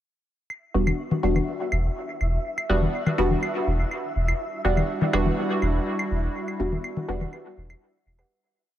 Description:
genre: dub techno.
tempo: 123 BPM.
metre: 4/4.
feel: straight.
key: E minor.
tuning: A4 = 440 Hz.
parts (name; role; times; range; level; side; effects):
claves and congas; percussion; 0.5-8.3 s; none; -29 LUFS; left 3 dB; dub echo.
flickering grainy texture; texture; 1.0-8.3 s; E5; -36 LUFS; right 1 dB; built-in reverb.
filtered dub chord stab; stabs; 0.7-7.4 s; G3 to F#4; -27 LUFS; equal; chorus, phaser, dub echo.
warm sub bass; bass; 0.7-8.2 s; E1; -25 LUFS; equal; tube saturation.
airy breathy pad; sustained chords; 4.4-8.3 s; G3 to F#4; -30 LUFS; right 1 dB; chorus.
warbly dusty pluck; riff; 5.1-8.3 s; G4 to F#5; -36 LUFS; right 5 dB; chorus, dub echo.
room: light reverb, digital ambience.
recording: none.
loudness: -23 LUFS.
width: side -12 dB against mid.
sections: 0.5-8.3 groove.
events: fade-out 5.7-8.3.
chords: 0.5 Em9.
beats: | 0.50 0.99 1.48 1.96 | 2.45 2.94 3.43 3.91 | 4.40 4.89 5.38 5.87 | 6.35 6.84 7.33 7.82.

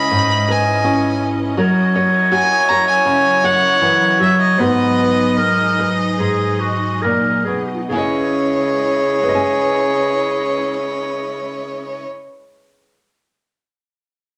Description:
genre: acoustic folk-pop ballad.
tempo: 68-82 BPM.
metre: 4/4.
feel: straight.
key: C# dorian.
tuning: A4 = 440 Hz.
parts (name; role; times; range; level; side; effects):
clear violin; melody; 0.0-12.0 s; C#5 to B5; -22 LUFS; equal; none.
warm clarinet; second line; 0.0-12.0 s; F#4 to D#5; -20 LUFS; equal; none.
nylon-string guitar; accompaniment; 0.0-13.0 s; G#2 to G#5; -22 LUFS; equal; none.
clear studio string section; sustained chords; 0.0-12.0 s; F#3 to D#5; -28 LUFS; equal; none.
room: wet studio reverb, RT60 0.7 s.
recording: none.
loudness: -16 LUFS.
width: mono.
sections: 0.0-7.9 A section; 7.9-11.4 B section.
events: slowing down 1.6-7.9.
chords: 0.0 C#m9; 1.6 F#7; 4.6 G#m7; 7.9 C#m9.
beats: 0.10 0.84 | 1.57 2.31 3.06 3.81 | 4.59 5.38 6.19 7.03 | 7.90 8.78 9.66 10.55.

